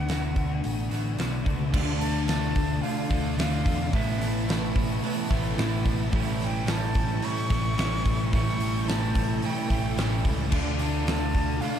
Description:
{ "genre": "rock, shoegaze and dream pop", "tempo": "109 BPM", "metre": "4/4", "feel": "straight", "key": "A major", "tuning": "A4 = 442 Hz", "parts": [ { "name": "concert flute", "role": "melody", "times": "0.0-11.8 s", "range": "E5 to C#6", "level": "-35 LUFS", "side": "equal", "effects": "tape echo" }, { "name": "clean electric guitar", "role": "riff", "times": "0.0-11.8 s", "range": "A2 to F#4", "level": "-33 LUFS", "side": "right 12 dB", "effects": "reverse reverb" }, { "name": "thick fuzz guitar", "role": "riff", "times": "0.0-11.8 s", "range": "A2 to D4", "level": "-32 LUFS", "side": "left 10 dB", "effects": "distortion, ensemble chorus" }, { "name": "picked electric bass", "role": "bass", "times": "0.0-11.6 s", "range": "A1 to E2", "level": "-29 LUFS", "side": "equal", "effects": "none" }, { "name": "huge arena drum kit", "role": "drums", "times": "0.1-11.7 s", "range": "crash cymbal, hi-hat, kick drum, snare drum", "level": "-28 LUFS", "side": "equal", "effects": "none" }, { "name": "ensemble organ-string", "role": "sustained chords", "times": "1.7-11.8 s", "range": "E4 to A5", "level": "-39 LUFS", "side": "right 1 dB", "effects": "ensemble chorus" }, { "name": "biting overdriven guitar", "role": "riff", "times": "1.7-11.8 s", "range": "A2 to D4", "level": "-35 LUFS", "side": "right 1 dB", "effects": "spring reverb" } ], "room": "studio ambience", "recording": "dark, warm production", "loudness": "-24 LUFS", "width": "side -9 dB against mid", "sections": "0.0-1.7 A section; 1.7-11.8 B section", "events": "none", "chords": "0.0 D6; 1.7 Dm; 3.9 Asus2; 6.1 A7; 10.5 Dm" }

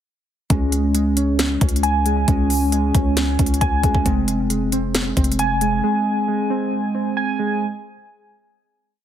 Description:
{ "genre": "hip hop, trap", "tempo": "135 BPM", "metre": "4/4", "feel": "half-time", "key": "F minor", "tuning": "A4 = 443 Hz", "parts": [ { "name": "warbly lo-fi synth keys", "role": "accompaniment", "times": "0.5-7.6 s", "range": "Ab3 to Ab5", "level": "-22 LUFS", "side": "right 3 dB", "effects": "chorus, low-pass filter" }, { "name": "mellow tine electric piano", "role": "arpeggios", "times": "0.5-7.6 s", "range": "C4 to Ab5", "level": "-22 LUFS", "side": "left 2 dB", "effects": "medium stereo tremolo, low-pass filter, tape echo" }, { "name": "growling 808-style bass", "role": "bass", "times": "0.5-5.8 s", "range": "F1 to Db2", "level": "-22 LUFS", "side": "left 1 dB", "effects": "none" }, { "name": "trap drum kit", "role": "drums", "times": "0.5-5.7 s", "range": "hi-hat, kick drum, snare drum", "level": "-20 LUFS", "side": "left 1 dB", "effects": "overdrive" } ], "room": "light reverb", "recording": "heavily compressed radio sound", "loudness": "-17 LUFS", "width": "side -10 dB against mid", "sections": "0.5-7.6 hook", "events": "none", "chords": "0.5 Db5; 4.1 Fm" }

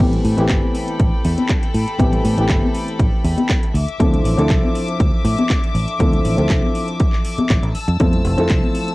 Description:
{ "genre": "nu-disco, nu disco", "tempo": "120 BPM", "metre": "4/4", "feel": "straight", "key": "A minor", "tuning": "A4 = 439 Hz", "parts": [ { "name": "dark baby grand piano", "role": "accompaniment", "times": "0.0-8.9 s", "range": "E3 to A4", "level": "-22 LUFS", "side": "left 1 dB", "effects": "sidechain pumping, cassette tape, analog delay" }, { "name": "clear symphonic string section", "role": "sustained chords", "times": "0.0-8.9 s", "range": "A4 to E6", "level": "-27 LUFS", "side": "left 3 dB", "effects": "sidechain pumping, cassette tape" }, { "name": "fingered electric bass", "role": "bass", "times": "0.0-8.6 s", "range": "F1 to A2", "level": "-19 LUFS", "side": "equal", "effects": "none" }, { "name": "electronic kick drum", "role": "drums", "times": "0.0-8.6 s", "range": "none", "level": "-18 LUFS", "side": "equal", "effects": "overdrive, cassette tape" }, { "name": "house drum kit", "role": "drums", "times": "0.0-8.9 s", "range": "crash cymbal, handclaps, hi-hat", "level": "-29 LUFS", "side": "equal", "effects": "overdrive, cassette tape" }, { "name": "congas", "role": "percussion", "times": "0.0-8.7 s", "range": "none", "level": "-22 LUFS", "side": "left 3 dB", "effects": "none" } ], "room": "light reverb", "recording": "home recording on cassette", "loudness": "-15 LUFS", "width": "side -20 dB against mid", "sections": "0.0-8.9 A section", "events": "none", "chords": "0.0 Am9; 3.7 Dm9; 7.7 Fmaj7" }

